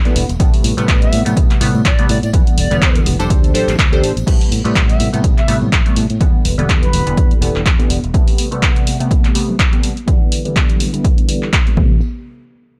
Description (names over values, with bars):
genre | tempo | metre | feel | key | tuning
filtered disco house | 124 BPM | 4/4 | swing 56% on 16ths | A minor | A4 = 440 Hz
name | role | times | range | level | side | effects
funky polysynth comp | accompaniment | 0.1-12.0 s | C3 to C5 | -22 LUFS | equal | chorus, phaser, vintage 12-bit sampler grit, sidechain pumping, low-pass filter
punchy analog drum machine | drums | 0.1-11.8 s | crash cymbal, handclaps, hi-hat | -23 LUFS | equal | sidechain pumping on hats, studio reverb, sidechain pumping on cymbals
tambourine and congas | percussion | 0.1-12.0 s | none | -30 LUFS | equal | none
fingered electric bass | bass | 0.2-8.1, 11.8-12.0 s | E1 to A2 | -22 LUFS | equal | sidechain pumping, low-pass filter
electronic kick drum | drums | 0.4-11.9 s | none | -16 LUFS | equal | studio reverb
silver concert flute | melody | 1.0-7.3 s | B4 to E5 | -26 LUFS | equal | sidechain pumping, low-pass filter, analog delay
room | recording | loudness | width
little or no reverb | dry, gritty hardware recording | -14 LUFS | mono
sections
0.0-4.3 A section; 4.3-12.0 B section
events
drop 0.0-4.3; filter sweep 4.3-12.0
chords
0.4 Am9; 2.3 Em7; 3.3 D7sus4; 4.3 Am9; 6.2 Em7; 8.1 Am9; 10.1 Em7; 11.8 Am9; 12.0 N.C.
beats
| 0.40 0.88 1.37 1.85 | 2.34 2.82 3.30 3.79 | 4.27 4.75 5.24 5.72 | 6.21 6.69 7.17 7.66 | 8.14 8.63 9.11 9.59 | 10.08 10.56 11.05 11.53